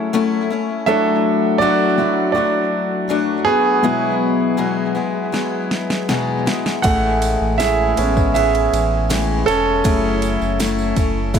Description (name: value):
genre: pop ballad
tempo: 80 BPM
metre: 4/4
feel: straight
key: A major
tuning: A4 = 443 Hz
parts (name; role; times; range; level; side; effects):
- warm concert grand piano; accompaniment; 0.0-11.4 s; F#3 to F#5; -18 LUFS; right 2 dB; none
- picked acoustic archtop guitar; arpeggios; 0.0-11.4 s; E2 to F#4; -20 LUFS; left 5 dB; tape echo
- smooth R&B drum kit; drums; 5.3-11.4 s; kick drum, ride cymbal, snare drum; -23 LUFS; right 1 dB; none
- sub bass with octave; bass; 6.8-11.4 s; E1 to A1; -22 LUFS; right 1 dB; none
- tambourine; percussion; 6.8-11.4 s; none; -34 LUFS; right 11 dB; none
room: moderate plate reverb, RT60 2.4 s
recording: none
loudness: -15 LUFS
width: side -7 dB against mid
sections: 0.0-11.4 A section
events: grand piano solo 0.0-11.4; drum fill 5.3-6.8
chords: 0.0 F#m7; 0.9 Dmaj7/F#; 3.8 Eadd9; 6.8 Amaj7; 9.9 F#m7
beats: 0.14 | 0.88 1.62 2.36 3.10 | 3.84 4.58 5.33 6.09 | 6.84 7.60 8.35 9.10 | 9.85 10.60 11.35